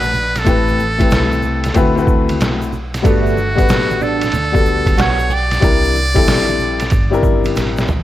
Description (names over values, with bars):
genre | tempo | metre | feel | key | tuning
hip hop, jazz-hop | 93 BPM | 4/4 | swing 66% on 16ths | unclear | A4 = 441 Hz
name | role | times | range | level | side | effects
trumpet with metal mute | melody | 0.0-7.6 s | F#4 to D5 | -19 LUFS | right 1 dB | none
semi-hollow electric guitar | second line | 0.0-7.6 s | A3 to G4 | -24 LUFS | right 9 dB | ensemble chorus, analog delay
clear upright piano | accompaniment | 0.0-7.9 s | D3 to B4 | -18 LUFS | left 5 dB | none
upright bass | bass | 0.0-8.0 s | G1 to D2 | -21 LUFS | right 1 dB | none
tube shaker and congas | percussion | 0.0-8.0 s | none | -29 LUFS | right 5 dB | none
trip hop sampler-style drum kit | drums | 0.4-8.0 s | hi-hat, kick drum, ride cymbal, snare drum, toms | -17 LUFS | right 1 dB | none
room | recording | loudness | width
studio reverb | none | -12 LUFS | side -14 dB against mid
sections
0.0-8.0 A section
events
drum fill 7.6-8.0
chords
0.5 Am9; 1.8 D13; 3.0 Gmaj9; 5.6 C9